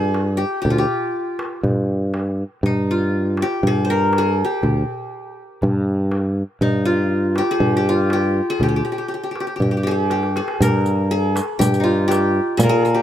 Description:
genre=Arabic maqam ensemble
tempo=120 BPM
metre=4/4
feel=straight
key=G maqam bayati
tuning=A4 = 439 Hz
part: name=qanun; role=melody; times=0.0-13.0 s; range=Eb4 to C5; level=-20 LUFS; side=left 1 dB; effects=none
part: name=sustaining fretless electric bass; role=bass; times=0.0-13.0 s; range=D2 to Bb2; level=-19 LUFS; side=equal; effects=none
part: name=darbuka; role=percussion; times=0.1-12.7 s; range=none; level=-26 LUFS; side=equal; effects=none
part: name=riq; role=percussion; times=10.6-12.9 s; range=none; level=-23 LUFS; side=right 3 dB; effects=none
room=little or no reverb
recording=rough home demo mix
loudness=-17 LUFS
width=side -11 dB against mid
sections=0.0-10.6 A section; 10.6-13.0 B section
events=drum fill 10.1-10.6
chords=none

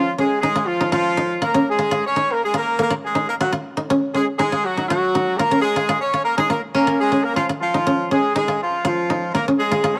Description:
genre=afrobeat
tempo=121 BPM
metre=4/4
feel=straight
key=unclear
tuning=A4 = 440 Hz
part: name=warm horn section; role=melody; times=0.0-10.0 s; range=F3 to Db5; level=-22 LUFS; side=equal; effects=none
part: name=koto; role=arpeggios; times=0.0-10.0 s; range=Bb3 to F4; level=-24 LUFS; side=equal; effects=none
room=light reverb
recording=none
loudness=-20 LUFS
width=mono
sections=0.0-10.0 A section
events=none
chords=0.0 Db69; 1.9 Gbmaj13; 5.9 Db6

